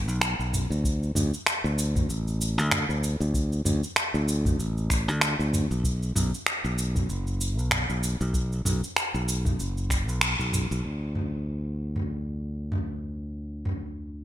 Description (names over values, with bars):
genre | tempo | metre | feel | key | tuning
sunset chillout | 96 BPM | 4/4 | swing 57% on 16ths | B minor | A4 = 440 Hz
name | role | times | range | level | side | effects
modern bright fingered electric bass | bass | 0.0-14.2 s | F#1 to D2 | -27 LUFS | equal | tube saturation
smooth R&B drum kit | drums | 0.1-13.8 s | cabasa, finger snaps, toms | -28 LUFS | equal | none
electronic kick drum | drums | 0.8-10.5 s | none | -28 LUFS | equal | none
room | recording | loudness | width
little or no reverb | none | -24 LUFS | side -12 dB against mid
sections
0.0-10.8 A section; 10.8-14.2 B section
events
band accent 10.2-10.5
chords
none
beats
0.22 | 0.84 1.47 2.09 2.72 | 3.34 3.97 4.59 5.22 | 5.84 6.47 7.09 7.72 | 8.34 8.97 9.59 10.22 | 10.84 11.47 12.09 12.72 | 13.34 13.97